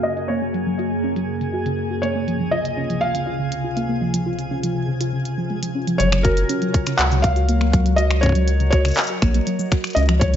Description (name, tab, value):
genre	IDM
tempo	121 BPM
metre	4/4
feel	straight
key	Gb lydian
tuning	A4 = 439 Hz
part	felt-muted upright piano	melody	0.0-10.4 s	Bb4 to Gb5	-24 LUFS	left 1 dB	vintage 12-bit sampler grit, digital delay
part	glassy FM pad	sustained chords	0.0-10.4 s	Db2 to Eb5	-26 LUFS	equal	ensemble chorus, built-in reverb, sidechain pumping
part	twinkling granular texture	texture	0.0-6.0 s	Ab4 to Ab5	-34 LUFS	equal	built-in reverb
part	soft round pluck	arpeggios	0.2-10.4 s	Db3 to Gb4	-25 LUFS	right 1 dB	chorus, vintage 12-bit sampler grit, tape echo
part	glitchy drum kit	drums	0.2-10.4 s	finger snaps, handclaps, hi-hat, shaker	-25 LUFS	equal	none
part	round analog bass	bass	6.0-10.4 s	Gb1 to Db2	-18 LUFS	equal	tube saturation
part	electronic kick drum	drums	6.2-10.3 s	none	-18 LUFS	equal	none
room	moderate digital room reverb, RT60 1.1 s, digital ambience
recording	low-pass filter, nothing above 7.7 kHz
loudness	-18 LUFS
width	side -10 dB against mid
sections	0.0-6.0 A section; 6.0-10.4 B section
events	filter sweep on synth arpeggio sound 0.0-6.0; filter sweep 0.0-6.0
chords	0.0 Gb; 2.0 Dbmaj7; 6.0 Gb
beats	| 0.05 0.54 1.04 1.54 | 2.03 2.53 3.02 3.52 | 4.01 4.51 5.01 5.50 | 6.00 6.49 6.99 7.49 | 7.98 8.48 8.97 9.47 | 9.97